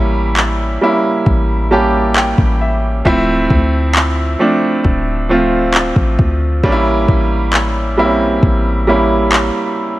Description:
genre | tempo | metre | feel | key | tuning
contemporary R&B | 67 BPM | 4/4 | straight | unclear | A4 = 440 Hz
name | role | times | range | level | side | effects
clear grand piano | accompaniment | 0.0-10.0 s | F3 to A5 | -14 LUFS | right 1 dB | none
warm 808-style bass | bass | 0.0-9.5 s | D1 to D2 | -17 LUFS | equal | none
smooth R&B drum kit | drums | 0.4-9.5 s | handclaps, kick drum | -16 LUFS | equal | none
room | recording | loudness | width
light reverb | none | -11 LUFS | side -16 dB against mid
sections
0.0-10.0 A section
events
grand piano fill 1.3-3.1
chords
0.0 A7b9; 3.1 Dm7; 6.6 A7b9

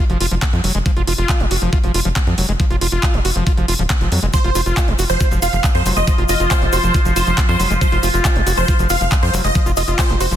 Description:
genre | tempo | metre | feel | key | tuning
psychedelic trance | 138 BPM | 4/4 | straight | unclear | A4 = 440 Hz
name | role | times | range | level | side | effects
screaming distorted acid line | riff | 0.0-10.4 s | F3 to Gb4 | -23 LUFS | right 1 dB | distortion, chorus, auto-pan, sidechain pumping, tape echo
tight sequencer bass | bass | 0.1-10.4 s | Eb1 to F2 | -19 LUFS | equal | none
drum and bass drum kit | drums | 0.1-10.4 s | handclaps, hi-hat | -24 LUFS | equal | overdrive, studio reverb
electronic kick drum | drums | 0.4-10.1 s | none | -16 LUFS | equal | overdrive, studio reverb
supersaw stab | melody | 4.3-10.4 s | C5 to F5 | -21 LUFS | right 1 dB | phaser, sidechain pumping, tape echo
overtone-sweeping drone | sustained chords | 5.5-10.4 s | F3 to F4 | -23 LUFS | left 1 dB | chorus, built-in reverb, sidechain pumping
tube shaker | percussion | 4.3-10.4 s | none | -30 LUFS | left 7 dB | none
room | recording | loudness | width
little or no reverb | dense, heavily limited modern master | -14 LUFS | side -11 dB against mid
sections
0.0-10.4 A section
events
none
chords
0.0 Ebsus2 (rootless)

